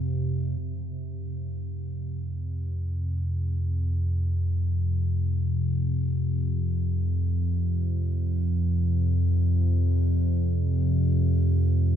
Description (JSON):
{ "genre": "ambient", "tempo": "free time", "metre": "none", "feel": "none", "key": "unclear", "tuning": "A4 = 437 Hz", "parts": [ { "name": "deep rumbling drone", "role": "solo", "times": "0.0-12.0 s", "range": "F2 to C3", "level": "-24 LUFS", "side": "equal", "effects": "built-in reverb" } ], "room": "moderate huge ambient reverb, RT60 7.6 s", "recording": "none", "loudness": "-24 LUFS", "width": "side -9 dB against mid", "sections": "0.6-12.0 A section", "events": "none", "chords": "0.0 F5" }